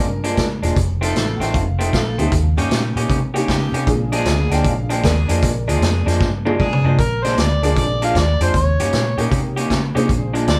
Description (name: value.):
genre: electric blues shuffle.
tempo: 154 BPM.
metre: 4/4.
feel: swing 66% on 8ths.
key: Bb mixolydian.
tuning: A4 = 440 Hz.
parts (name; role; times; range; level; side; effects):
honky-tonk upright piano; accompaniment; 0.0-10.5 s; Ab3 to G5; -28 LUFS; equal; none.
electric guitar through a small old amp; riff; 0.0-10.6 s; F2 to G4; -25 LUFS; equal; none.
vintage muted fingered electric bass; bass; 0.0-10.6 s; E1 to Db3; -22 LUFS; equal; none.
vintage drum kit; drums; 0.2-10.6 s; hi-hat, kick drum, snare drum, toms; -23 LUFS; equal; none.
edgy saxophone section; stabs; 1.0-7.0 s; Bb3 to A4; -30 LUFS; equal; none.
overdriven harmonica; melody; 7.0-10.6 s; Bb4 to F5; -23 LUFS; equal; none.
room: moderate studio reverb, RT60 0.5 s.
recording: band playing live in one room.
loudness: -18 LUFS.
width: mono.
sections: 0.0-7.0 A section; 7.0-10.6 B section.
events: drum fill 6.2-7.0.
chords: 0.0 Bb7; 0.8 F7; 2.3 Eb7; 3.9 Bb7; 8.5 Eb7; 10.1 Bb7.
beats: 0.37 | 0.76 1.15 1.54 1.93 | 2.32 2.71 3.10 3.48 | 3.87 4.26 4.65 5.04 | 5.43 5.82 6.21 6.59 | 6.98 7.37 7.76 8.15 | 8.54 8.92 9.31 9.70 | 10.09 10.48.